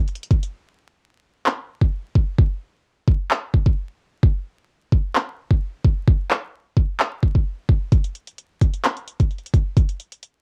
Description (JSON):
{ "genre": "hip hop", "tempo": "130 BPM", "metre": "4/4", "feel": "half-time", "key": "none", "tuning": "none", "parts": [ { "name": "trap drum kit", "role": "drums", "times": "0.1-10.3 s", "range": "handclaps, hi-hat, kick drum", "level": "-20 LUFS", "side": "equal", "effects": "cassette tape" } ], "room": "little or no reverb", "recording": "home recording on cassette, vinyl crackle", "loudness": "-21 LUFS", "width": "mono", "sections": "0.0-10.4 A section", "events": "hi-hats muted 0.5-7.9; break 0.5-1.5", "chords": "none", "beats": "0.08 | 0.54 1.00 1.46 1.92 | 2.38 2.85 3.31 3.77 | 4.23 4.69 5.15 5.61 | 6.08 6.54 7.00 7.46 | 7.92 8.38 8.85 9.31 | 9.77 10.23" }